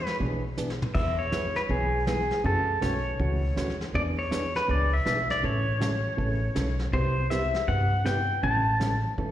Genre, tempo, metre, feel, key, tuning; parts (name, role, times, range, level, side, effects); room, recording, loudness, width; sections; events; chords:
country, western swing; 160 BPM; 4/4; swing 63% on 8ths; A major; A4 = 440 Hz
pedal steel guitar; melody; 0.0-9.1 s; G#4 to A5; -28 LUFS; left 1 dB; slapback echo
upright bass; bass; 0.0-9.3 s; G#1 to G2; -29 LUFS; equal
vintage brush drum kit; drums; 0.1-9.3 s; brushed snare drum, crash cymbal, hi-hat, kick drum, snare drum, toms; -35 LUFS; equal; slapback echo
hollow-body jazz guitar; accompaniment; 0.2-9.3 s; C3 to B4; -32 LUFS; right 2 dB; slapback echo
small room ambience; live gig heard through the venue's PA, recital hall reverb; -24 LUFS; side -12 dB against mid
0.0-9.3 A section
drum fill 0.6-1.0
0.0 E7; 1.0 E; 2.4 F#m7; 3.9 E7; 5.4 A; 6.9 Cmaj7; 8.4 A